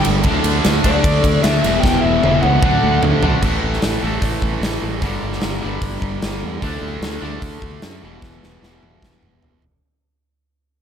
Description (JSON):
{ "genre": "hard rock", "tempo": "150 BPM", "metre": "4/4", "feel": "straight", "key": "E minor", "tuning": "A4 = 440 Hz", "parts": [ { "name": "bluesy overdriven lead guitar", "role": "melody", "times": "0.0-3.0 s", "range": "D5 to G5", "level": "-21 LUFS", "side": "left 2 dB", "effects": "distortion, digital delay" }, { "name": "high-gain distorted guitar", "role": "riff", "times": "0.0-9.6 s", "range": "E2 to D4", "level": "-25 LUFS", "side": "right 12 dB", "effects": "distortion" }, { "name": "overdriven semi-hollow guitar", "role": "riff", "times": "0.0-9.6 s", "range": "E2 to D4", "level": "-25 LUFS", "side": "left 11 dB", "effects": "none" }, { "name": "sludgy distorted guitar", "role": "riff", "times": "0.0-3.4 s", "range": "G2 to E4", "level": "-22 LUFS", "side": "right 1 dB", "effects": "overdrive" }, { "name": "huge arena drum kit", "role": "drums", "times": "0.0-9.7 s", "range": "crash cymbal, hi-hat, kick drum, ride cymbal, snare drum, toms", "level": "-20 LUFS", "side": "equal", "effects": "none" }, { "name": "modern bright fingered electric bass", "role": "bass", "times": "0.1-9.8 s", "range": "E1 to F#2", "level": "-23 LUFS", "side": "equal", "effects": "none" } ], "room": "small room ambience", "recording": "none", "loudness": "-15 LUFS", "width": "side -8 dB against mid", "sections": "0.0-3.4 A section; 3.4-9.8 B section", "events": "drum fill 1.8-3.4, 8.2-9.8; fade-out 3.4-9.8", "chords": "0.3 D; 1.6 Em; 2.6 D; 3.4 A5; 5.0 G5; 6.6 D5; 8.0 E5" }